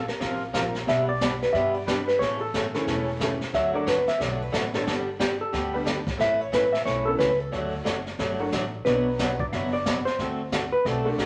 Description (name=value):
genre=country, western swing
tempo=180 BPM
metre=4/4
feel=swing 62% on 8ths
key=D major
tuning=A4 = 440 Hz
part: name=hollow-body jazz guitar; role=melody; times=0.0-11.3 s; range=G4 to E5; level=-28 LUFS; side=equal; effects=none
part: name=upright bass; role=bass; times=0.0-11.3 s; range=E1 to G2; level=-37 LUFS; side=equal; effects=none
part: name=jazz brush drum kit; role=drums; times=0.1-11.3 s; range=brushed snare drum, hi-hat, kick drum, snare drum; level=-33 LUFS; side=equal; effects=none
part: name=picked swing-style acoustic guitar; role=accompaniment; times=0.2-11.3 s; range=B2 to B4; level=-32 LUFS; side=equal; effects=none
part: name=honky-tonk upright piano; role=accompaniment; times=0.5-11.2 s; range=E3 to C#5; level=-33 LUFS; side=equal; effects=none
room=wet studio reverb, RT60 0.8 s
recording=none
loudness=-26 LUFS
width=mono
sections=0.0-11.3 A section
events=none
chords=0.0 Bbsus2; 0.9 G/B; 2.2 A; 3.5 D; 4.9 G; 6.2 Aadd9; 7.5 D; 8.9 Bm; 10.2 D7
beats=0.21 0.54 | 0.88 1.21 1.54 1.88 | 2.21 2.54 2.87 3.21 | 3.54 3.87 4.20 4.54 | 4.87 5.20 5.53 5.87 | 6.20 6.53 6.86 7.20 | 7.53 7.86 8.19 8.52 | 8.86 9.19 9.52 9.85 | 10.19 10.52 10.85 11.18